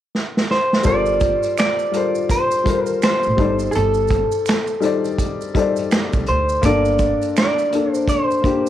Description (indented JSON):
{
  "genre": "R&B, neo-soul",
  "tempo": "83 BPM",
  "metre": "4/4",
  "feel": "swing 62% on 16ths",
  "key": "G minor",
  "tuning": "A4 = 440 Hz",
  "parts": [
    { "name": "unplugged drum kit", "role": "drums", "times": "0.1-8.7 s", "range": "finger snaps, hi-hat, kick drum, snare drum", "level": "-20 LUFS", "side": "right 1 dB", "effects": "cassette tape" },
    { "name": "electric guitar through a small old amp", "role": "melody", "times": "0.5-8.7 s", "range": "Ab4 to D5", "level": "-20 LUFS", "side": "right 1 dB", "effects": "cassette tape" },
    { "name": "dark upright piano", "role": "accompaniment", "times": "0.8-8.7 s", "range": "G3 to D5", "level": "-21 LUFS", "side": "left 5 dB", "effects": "cassette tape" },
    { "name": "maracas and finger snaps", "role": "percussion", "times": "0.8-8.7 s", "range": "none", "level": "-36 LUFS", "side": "right 10 dB", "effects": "none" },
    { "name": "upright bass", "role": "bass", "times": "0.9-7.1 s", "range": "G1 to D2", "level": "-23 LUFS", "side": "right 1 dB", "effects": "none" }
  ],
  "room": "light reverb, small room ambience",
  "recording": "home recording on cassette",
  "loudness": "-16 LUFS",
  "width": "side -12 dB against mid",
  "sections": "0.9-8.7 A section",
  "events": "drum fill 0.1-0.9",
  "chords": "0.0 N.C.; 0.9 Gm11; 3.4 Cm69/G; 6.6 Bbmaj7/G"
}